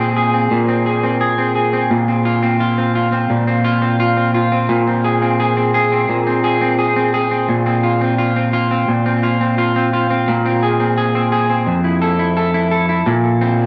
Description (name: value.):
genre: dream pop.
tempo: 86 BPM.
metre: 4/4.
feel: straight.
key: unclear.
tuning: A4 = 440 Hz.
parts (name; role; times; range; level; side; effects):
electric guitar at the edge of break-up; solo; 0.0-13.7 s; F2 to A4; -16 LUFS; equal; lush chorus, analog delay.
room: wet echo chamber reverb, RT60 1.3 s.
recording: echo-heavy mix.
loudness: -16 LUFS.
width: mono.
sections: 0.0-13.1 A section.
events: none.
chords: 0.0 Abadd9/Bb; 1.9 Bbsus2; 4.7 Abadd9/Bb; 7.5 Bbsus2; 10.3 Abadd9/Bb; 11.7 Fmaj7; 13.1 Bbsus2.